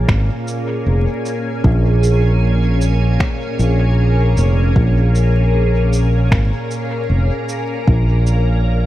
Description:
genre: ambient dub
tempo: 77 BPM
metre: 4/4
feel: swing 56% on 16ths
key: Bb minor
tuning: A4 = 439 Hz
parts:
  - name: soft additive organ-like pad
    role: sustained chords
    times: 0.0-8.9 s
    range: Bb2 to Bb4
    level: -20 LUFS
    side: equal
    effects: ensemble chorus, built-in reverb, phaser
  - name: fingered electric bass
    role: bass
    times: 0.0-8.9 s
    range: F1 to Bb1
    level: -14 LUFS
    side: equal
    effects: none
  - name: electronic finger snaps and cabasa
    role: drums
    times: 0.1-8.4 s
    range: none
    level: -28 LUFS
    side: right 1 dB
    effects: studio reverb, dub echo
  - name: electronic kick drum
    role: drums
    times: 0.1-8.1 s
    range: none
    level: -18 LUFS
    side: equal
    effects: overdrive, studio reverb
room: digital ambience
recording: vinyl crackle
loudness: -13 LUFS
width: side -14 dB against mid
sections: 0.0-8.9 A section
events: none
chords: 0.0 Bbm7

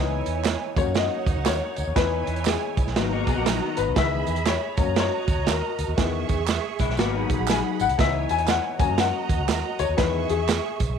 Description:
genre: uptempo 1960s-style soul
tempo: 120 BPM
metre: 4/4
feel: swing 62% on 8ths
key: C# dorian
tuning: A4 = 441 Hz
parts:
  - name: clear symphonic string section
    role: second line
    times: 0.0-11.0 s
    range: D#4 to C#6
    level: -30 LUFS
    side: right 11 dB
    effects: none
  - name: clear upright piano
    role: accompaniment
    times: 0.0-10.8 s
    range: D#3 to G#5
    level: -26 LUFS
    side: left 12 dB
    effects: none
  - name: vintage muted fingered electric bass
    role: bass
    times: 0.0-11.0 s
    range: G#1 to F#2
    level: -28 LUFS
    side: equal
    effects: tube saturation
  - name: crunchy breakbeat drum kit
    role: drums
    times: 0.3-10.9 s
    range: hi-hat, kick drum, snare drum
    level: -26 LUFS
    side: right 4 dB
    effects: none
  - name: tambourine and handclaps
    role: percussion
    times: 0.3-10.9 s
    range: none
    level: -36 LUFS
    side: right 13 dB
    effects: none
  - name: electric guitar through a small old amp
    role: riff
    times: 3.0-7.9 s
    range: D#3 to G#4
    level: -29 LUFS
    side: left 12 dB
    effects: ensemble chorus
room: light reverb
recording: 1960s-style stereo with parts hard left and right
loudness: -21 LUFS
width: side -7 dB against mid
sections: 0.0-11.0 A section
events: upright piano solo 0.0-11.0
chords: 0.0 C#m7; 0.7 D#m7; 2.0 C#m7/E; 3.0 G#m7; 4.0 C#m7; 4.7 D#m7; 6.0 C#m7/E; 7.0 G#m7; 8.0 C#m7; 8.7 D#m7; 10.0 C#m7/E

